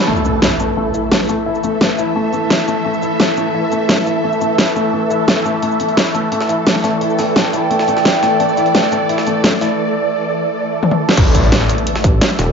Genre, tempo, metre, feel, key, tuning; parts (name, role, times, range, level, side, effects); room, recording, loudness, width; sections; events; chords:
dark technical drum and bass; 173 BPM; 4/4; straight; A4 = 440 Hz
swarming drone; sustained chords; 0.0-12.5 s; E3 to E5; -18 LUFS; right 1 dB; built-in reverb, phaser, vintage 12-bit sampler grit, sidechain pumping
warbly tape-like pad; texture; 0.0-9.8, 12.3-12.5 s; A3 to B5; -20 LUFS; right 2 dB; chorus, built-in reverb, sidechain pumping
felt-muted upright piano; arpeggios; 0.1-9.7 s; A3 to E4; -20 LUFS; left 5 dB; sidechain pumping, low-pass filter, ping-pong delay
impact; sound effects; 0.1-1.5, 11.2-12.5 s; -21 LUFS; equal
dubstep drum kit; drums; 0.2-12.5 s; cabasa, crash cymbal, hi-hat, snare drum, toms; -16 LUFS; equal
jungle sampler-style drum kit; drums; 5.6-12.5 s; hi-hat, snare drum; -27 LUFS; right 1 dB; high-pass filter on hats, high-pass filter on snare, high-pass filter on room
snarling distorted saw bass; bass; 11.2-11.7 s; A1; -16 LUFS; equal; distortion, overdrive, sidechain pumping
electronic kick drum; drums; 11.2-12.1 s; -13 LUFS; equal
pulsing pluck wobble bass; bass; 12.0-12.5 s; E1 to A1; -16 LUFS; equal; chorus
moderate digital room reverb, RT60 1.1 s; nothing above 7.5 kHz; -13 LUFS; side -6 dB against mid
0.1-11.2 A section; 11.2-12.5 B section
band accent 0.0; impact 0.1-1.5, 11.2-12.5; break 9.8-11.2; drum fill 10.8-11.2; drop 11.2-12.5
0.1 A5